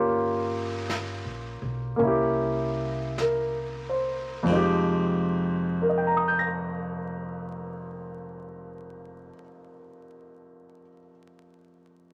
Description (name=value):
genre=jazz ballad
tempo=45-59 BPM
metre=4/4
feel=swing 68% on 8ths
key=F minor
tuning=A4 = 440 Hz
part: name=warm grand piano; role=accompaniment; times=0.0-12.1 s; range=F2 to Bb6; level=-28 LUFS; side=equal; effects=none
part: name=upright bass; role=bass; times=0.0-9.3 s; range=F1 to C2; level=-39 LUFS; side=equal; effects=none
part: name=vintage brush drum kit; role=drums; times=0.9-5.5 s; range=brushed snare drum, hi-hat, kick drum, ride cymbal, snare drum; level=-42 LUFS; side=equal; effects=none
room=light reverb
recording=vinyl crackle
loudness=-27 LUFS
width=mono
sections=0.0-4.5 A section; 4.5-9.8 B section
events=slowing down 0.0-4.5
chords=0.0 Gm7b5; 2.0 C7b9; 4.5 Fm9